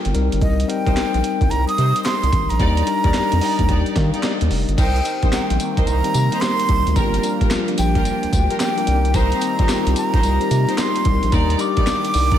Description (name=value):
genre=R&B, new jack swing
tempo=110 BPM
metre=4/4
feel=swing 65% on 16ths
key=C minor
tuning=A4 = 439 Hz
part: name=breathy jazz flute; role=melody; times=0.0-12.4 s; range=Eb5 to Eb6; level=-23 LUFS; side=right 1 dB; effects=none
part: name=mellow tine electric piano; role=accompaniment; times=0.0-12.4 s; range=G3 to Bb5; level=-24 LUFS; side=left 7 dB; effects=slapback echo
part: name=round analog bass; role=bass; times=0.1-12.4 s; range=F1 to Eb3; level=-19 LUFS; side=right 1 dB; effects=none
part: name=breakbeat sampler-style drum kit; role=drums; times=0.1-12.4 s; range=crash cymbal, handclaps, hi-hat, kick drum, snare drum, tambourine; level=-21 LUFS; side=right 1 dB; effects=none
part: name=dark studio string section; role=stabs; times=0.9-12.4 s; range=Eb4 to D5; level=-29 LUFS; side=right 1 dB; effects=slapback echo
part: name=phased analog pad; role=sustained chords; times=4.8-12.4 s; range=Eb3 to D5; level=-27 LUFS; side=right 1 dB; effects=phaser, chorus
room=moderate lush hall reverb, RT60 1.8 s, digital ambience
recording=big arena sound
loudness=-16 LUFS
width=side -10 dB against mid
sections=0.0-4.8 A section; 4.8-12.4 B section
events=tine electric piano fill 3.1-4.8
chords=0.1 Cm7; 2.6 Ebmaj7; 4.8 Cm7; 7.0 Gm7; 8.9 Cm7; 11.3 Ebmaj7